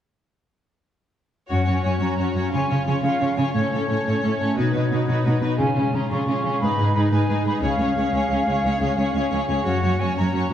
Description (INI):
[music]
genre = cinematic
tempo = 118 BPM (dotted quarters)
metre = 12/8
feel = straight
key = unclear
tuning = A4 = 439 Hz
[part]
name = clear symphonic violin section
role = melody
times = 1.5-10.5 s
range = G#4 to C#5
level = -31 LUFS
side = left 1 dB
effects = none
[part]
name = rich symphonic violin section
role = second line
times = 1.5-10.5 s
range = E#4 to A4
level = -30 LUFS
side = left 1 dB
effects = none
[part]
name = silver concert flute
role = second line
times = 1.5-10.5 s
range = C#5 to C#6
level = -27 LUFS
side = equal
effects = none
[part]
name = rich symphonic viola section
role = accompaniment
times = 1.5-10.5 s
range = C#4 to D#4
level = -27 LUFS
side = right 1 dB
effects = none
[part]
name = concert harp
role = arpeggios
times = 1.5-10.5 s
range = F#2 to G#5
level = -27 LUFS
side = left 5 dB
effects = none
[part]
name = rich symphonic cello section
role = bass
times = 1.5-10.5 s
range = C#2 to C#3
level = -23 LUFS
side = right 2 dB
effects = none
[sound]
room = wet scoring stage reverb, RT60 1.5 s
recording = dark, warm production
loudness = -19 LUFS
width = side -10 dB against mid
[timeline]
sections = 1.5-10.5 A section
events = none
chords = 1.5 F#; 2.5 C#; 3.6 A; 4.6 B; 5.6 C#; 6.6 G#m; 7.6 C#; 9.7 F#